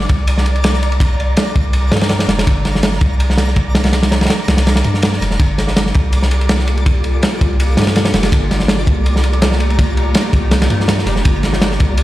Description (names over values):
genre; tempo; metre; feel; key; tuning
drum and bass, jungle; 164 BPM; 4/4; straight; G minor; A4 = 440 Hz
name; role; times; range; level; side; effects
long sustained 808-style bass; bass; 0.0-12.0 s; F1 to G2; -16 LUFS; equal; none
crunchy breakbeat drum kit; drums; 0.0-12.0 s; kick drum, ride cymbal, snare drum; -14 LUFS; equal; none
twinkling granular texture; texture; 0.0-12.0 s; D5 to D6; -26 LUFS; equal; built-in reverb
room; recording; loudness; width
light reverb, studio reverb; played on a big sound system in a bare room, stone room reverb; -12 LUFS; side -15 dB against mid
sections
0.0-12.0 A section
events
kick drops out 4.7-5.4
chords
0.0 Gm9